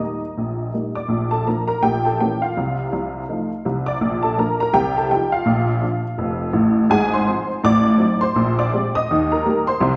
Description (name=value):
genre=jazz, stride piano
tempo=165 BPM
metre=4/4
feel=swing 60% on 8ths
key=Bb major, Eb major from 6.9 s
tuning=A4 = 441 Hz
part: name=honky-tonk upright piano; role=solo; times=0.0-10.0 s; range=F1 to Eb6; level=-20 LUFS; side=equal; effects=none
room=wet recital hall reverb, RT60 1.7 s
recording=recorded in a church or concert hall, nothing above 7.9 kHz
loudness=-20 LUFS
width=mono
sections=0.0-1.1 A section; 1.1-10.0 B section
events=none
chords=0.0 Eb; 1.1 Bb; 1.8 Bbdim7; 2.6 F7/C; 4.0 Bb; 4.7 F7/C; 5.5 Bb; 6.9 Fm/Ab; 7.6 Adim7; 8.4 Bb13; 9.1 Eb